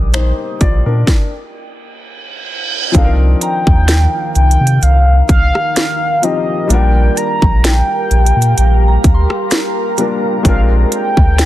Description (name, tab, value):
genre	contemporary R&B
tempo	64 BPM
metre	4/4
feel	swing 54% on 16ths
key	C minor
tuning	A4 = 441 Hz
part	warm baby grand piano	accompaniment	0.0-11.5 s	F3 to D5	-21 LUFS	left 4 dB	none
part	deep dark ambient pad	sustained chords	0.0-11.5 s	Eb3 to Eb6	-22 LUFS	right 2 dB	chorus, built-in reverb
part	warm sub bass	bass	0.0-11.5 s	Bb1 to C3	-11 LUFS	equal	none
part	trap drum kit	drums	0.1-11.5 s	finger snaps, hi-hat, kick drum, rim click, snare drum	-13 LUFS	equal	soft clipping on snare
part	reverse cymbal	sound effects	2.1-2.9 s	none	-21 LUFS	right 7 dB	none
part	mellow horn-like synth lead	melody	3.0-11.5 s	Eb5 to Bb5	-17 LUFS	equal	chorus, digital delay
part	soft synth bell	texture	3.4-11.4 s	G5 to C6	-27 LUFS	equal	chorus, digital delay
room	little or no reverb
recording	dense, heavily limited modern master, lossy compression artefacts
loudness	-10 LUFS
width	side -14 dB against mid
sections	0.0-2.9 A section; 2.9-11.5 B section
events	stop 1.1-2.9; reverse cymbal 2.1-2.9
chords	0.0 Ebmaj7/Bb; 2.9 Cm11; 6.7 Gm7/Bb; 10.4 Bb9